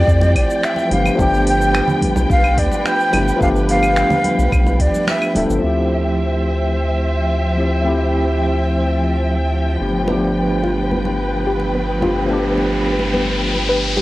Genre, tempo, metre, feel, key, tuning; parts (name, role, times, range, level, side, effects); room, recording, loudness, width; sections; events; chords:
sunset chillout; 108 BPM; 4/4; straight; D dorian; A4 = 442 Hz
breathy jazz flute; melody; 0.0-5.4 s; D5 to G5; -19 LUFS; equal; cassette tape, tape echo
tine electric piano; accompaniment; 0.0-14.0 s; F3 to A4; -20 LUFS; equal; medium tremolo, auto-pan, cassette tape, tape echo
warm studio string section; sustained chords; 0.0-14.0 s; F3 to G5; -22 LUFS; equal; cassette tape
round analog bass; bass; 0.0-14.0 s; D1 to F2; -20 LUFS; equal
electronic kick drum; drums; 0.1-4.9 s; -20 LUFS; equal; cassette tape
smooth R&B drum kit; drums; 0.1-14.0 s; claves, finger snaps, hi-hat, shaker; -25 LUFS; equal; low-pass filter on perc, cassette tape, low-pass filter on snare, low-pass filter on hats
congas; percussion; 0.2-5.5, 10.1-14.0 s; -26 LUFS; right 2 dB
soft round pluck; arpeggios; 10.1-14.0 s; B3 to B4; -23 LUFS; left 1 dB; chorus, cassette tape, tape echo
riser; sound effects; 11.5-14.0 s; -25 LUFS; left 1 dB
moderate studio reverb, RT60 0.5 s; home recording on cassette; -14 LUFS; side -17 dB against mid
0.0-5.6 A section; 5.6-14.0 B section
band accent 5.1; riser 11.5-14.0
0.0 Dm11; 0.9 G7; 5.6 Dm11; 9.8 G7